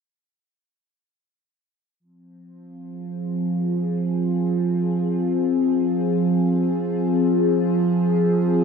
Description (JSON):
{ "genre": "ambient", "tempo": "free time", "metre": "none", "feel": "none", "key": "F minor", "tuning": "A4 = 442 Hz", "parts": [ { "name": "evolving wavetable pad", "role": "sustained chords", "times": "2.9-8.6 s", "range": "F3 to Ab4", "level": "-19 LUFS", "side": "equal", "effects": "chorus, built-in reverb, phaser" } ], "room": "wet concert hall reverb, RT60 2.2 s", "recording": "dark, warm production", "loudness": "-19 LUFS", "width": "side -6 dB against mid", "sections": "2.0-8.6 A section", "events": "fade-in on ambient pad 2.0-8.6", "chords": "2.0 Fm", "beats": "free time" }